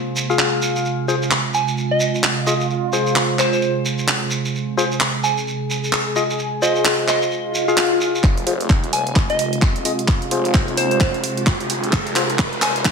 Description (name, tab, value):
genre	bass house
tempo	130 BPM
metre	4/4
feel	swing 60% on 16ths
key	F minor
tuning	A4 = 444 Hz
part	sweeping resonant pad	sustained chords	0.0-12.9 s	C3 to Ab4	-24 LUFS	right 4 dB	chorus, sidechain pumping
part	percussive organ stab	stabs	0.0-12.2 s	F4 to F5	-23 LUFS	left 4 dB	chorus, vintage 12-bit sampler grit, sidechain pumping, dub echo
part	shekere	percussion	0.2-8.2 s	none	-26 LUFS	right 3 dB	none
part	house drum kit	drums	0.4-12.9 s	handclaps, hi-hat	-21 LUFS	right 1 dB	low-pass filter on snare, low-pass filter on hats, low-pass filter on room
part	soft synth bell	melody	1.5-12.8 s	C5 to Ab5	-23 LUFS	right 2 dB	chorus, phaser, vintage 12-bit sampler grit, dub echo
part	swell and riser	sound effects	7.4-12.9 s	none	-27 LUFS	left 1 dB	none
part	phased detuned saw bass	bass	8.2-12.9 s	Eb1 to G1	-29 LUFS	equal	phaser, overdrive, sidechain pumping, high-pass filter
part	electronic kick drum	drums	8.2-12.9 s	none	-17 LUFS	equal	none
room	moderate digital room reverb, RT60 1.0 s, digital ambience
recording	high-pass filter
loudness	-16 LUFS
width	side -5 dB against mid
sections	0.0-8.2 A section; 8.2-12.9 B section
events	swell 7.4-8.2; build-up 8.2-12.9; drum fill 8.2-12.9; filter sweep 8.2-12.9; riser 9.6-12.9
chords	0.0 Fm